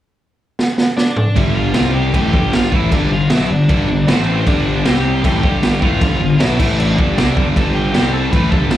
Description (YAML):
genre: punk rock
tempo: 155 BPM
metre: 4/4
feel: straight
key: G mixolydian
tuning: A4 = 440 Hz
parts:
  - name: raw garage drum kit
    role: drums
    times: 0.6-8.8 s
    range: crash cymbal, kick drum, snare drum, toms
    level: -16 LUFS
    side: right 1 dB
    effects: none
  - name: dark smooth lead guitar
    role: melody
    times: 1.0-8.8 s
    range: C4 to B5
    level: -23 LUFS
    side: equal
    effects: overdrive, slapback echo
  - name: distorted electric guitar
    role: riff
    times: 1.4-8.8 s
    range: G2 to C4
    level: -21 LUFS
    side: left 7 dB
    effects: distortion
  - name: distorted electric guitar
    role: riff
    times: 1.4-8.8 s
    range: G2 to C4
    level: -22 LUFS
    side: right 7 dB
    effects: distortion, slapback echo
  - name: high-gain distorted guitar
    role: riff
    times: 1.4-8.8 s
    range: G2 to C4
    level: -24 LUFS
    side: left 1 dB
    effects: distortion
  - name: fuzz picked electric bass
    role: bass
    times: 1.4-8.8 s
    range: G1 to C2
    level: -19 LUFS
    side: equal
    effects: overdrive
room: little or no reverb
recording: live gig heard through the venue's PA, club reverb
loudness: -12 LUFS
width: side -12 dB against mid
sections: 0.0-1.4 A section; 1.4-8.8 B section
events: drum fill 0.6-1.4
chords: 0.0 N.C.; 1.4 G5; 1.8 C5; 2.1 G; 4.1 A5; 4.5 G5; 4.8 C5; 5.2 G; 6.6 A5; 7.0 G5; 7.9 C5